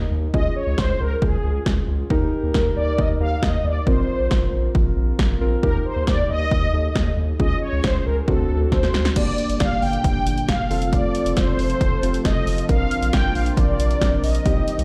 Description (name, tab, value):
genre	synth-pop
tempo	136 BPM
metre	4/4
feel	straight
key	Bb major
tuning	A4 = 440 Hz
part	mellow synth brass	melody	0.0-14.8 s	Ab4 to G5	-28 LUFS	equal	chorus, phaser, delay
part	muted felt-like synth keys	accompaniment	0.0-14.8 s	Bb3 to Bb4	-29 LUFS	equal	chorus
part	round analog bass	bass	0.0-14.8 s	F1 to Eb2	-25 LUFS	equal	none
part	punchy analog drum machine	drums	0.3-14.8 s	crash cymbal, hi-hat, kick drum, snare drum	-24 LUFS	equal	none
part	chorused pulse-width pad	sustained chords	9.2-14.8 s	Bb2 to A4	-32 LUFS	equal	none
room	light reverb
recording	played on a big sound system in a bare room, large studio reverb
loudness	-20 LUFS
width	mono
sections	0.0-9.2 A section; 9.2-14.8 B section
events	drum fill 8.7-9.2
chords	0.3 Db; 2.1 Eb; 3.9 Bbsus2; 5.6 Eb; 7.4 Db; 8.3 D7; 9.2 Gm; 10.7 F; 12.7 Bbadd9